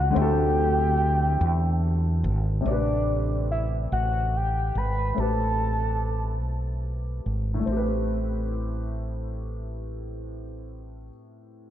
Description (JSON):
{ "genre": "slow six-eight R&B", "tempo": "48 BPM (dotted quarters)", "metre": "6/8", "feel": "straight", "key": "A dorian", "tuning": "A4 = 440 Hz", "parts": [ { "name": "soft octave-layered synth lead", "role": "melody", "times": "0.0-6.8 s", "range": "D5 to B5", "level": "-28 LUFS", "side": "equal", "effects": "chorus, diffuse ambient delay" }, { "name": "dark baby grand piano", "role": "accompaniment", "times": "0.0-11.7 s", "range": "A2 to B4", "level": "-30 LUFS", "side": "left 2 dB", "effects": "lush chorus" }, { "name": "mellow fretless electric bass", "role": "bass", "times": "0.0-11.1 s", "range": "G#1 to E2", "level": "-26 LUFS", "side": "equal", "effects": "none" } ], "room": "moderate plate reverb, RT60 2.8 s", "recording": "dreamy mix soaked in reverb", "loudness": "-23 LUFS", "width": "side -11 dB against mid", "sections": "0.0-2.7 A section; 2.7-7.7 B section; 7.7-10.2 C section", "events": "none", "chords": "0.0 D13; 2.7 Am9" }